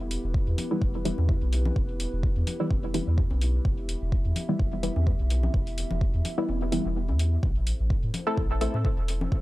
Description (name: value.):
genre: dub techno.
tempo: 127 BPM.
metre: 4/4.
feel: swing 55% on 16ths.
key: E minor.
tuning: A4 = 440 Hz.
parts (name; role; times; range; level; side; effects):
dark analog pad; sustained chords; 0.0-9.4 s; B3 to E5; -38 LUFS; equal; chorus, sidechain pumping.
soft dub sub bass; bass; 0.0-9.4 s; E1 to A2; -27 LUFS; equal; transformer saturation, sidechain pumping.
electronic hi-hat; drums; 0.1-9.2 s; none; -37 LUFS; left 1 dB; none.
electronic kick drum; drums; 0.3-9.4 s; none; -27 LUFS; equal; none.
congas; percussion; 0.6-9.3 s; none; -38 LUFS; left 3 dB; overdrive, sidechain pumping on perc, dub echo.
filtered dub chord stab; stabs; 0.7-8.8 s; E3 to A4; -30 LUFS; equal; chorus, phaser, sidechain pumping, dub echo.
room: digital ambience.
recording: dry, gritty hardware recording, transformer saturation.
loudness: -24 LUFS.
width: side -17 dB against mid.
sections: 0.0-9.4 A section.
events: filter sweep on synth stab 0.0-9.4; kick drops out 6.5-7.4.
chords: 0.0 Em; 7.4 Am.